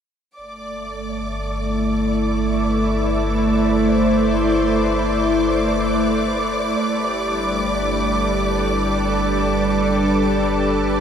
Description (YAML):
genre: ambient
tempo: free time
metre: none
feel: none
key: unclear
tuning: A4 = 440 Hz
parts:
  - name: soft additive organ-like pad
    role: sustained chords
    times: 1.0-11.0 s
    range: G3 to C5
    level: -18 LUFS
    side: equal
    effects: ensemble chorus, built-in reverb, shimmer reverb
  - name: warm sub bass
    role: bass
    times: 0.4-11.0 s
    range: G1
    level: -26 LUFS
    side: equal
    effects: none
  - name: warm symphonic violin section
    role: texture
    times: 0.4-11.0 s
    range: D5 to D6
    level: -25 LUFS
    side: right 1 dB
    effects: shimmer reverb
room: wet huge ambient reverb, RT60 7.8 s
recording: none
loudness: -17 LUFS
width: side -8 dB against mid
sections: 0.4-11.0 A section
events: none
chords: 0.4 Am7/G; 6.8 Gadd9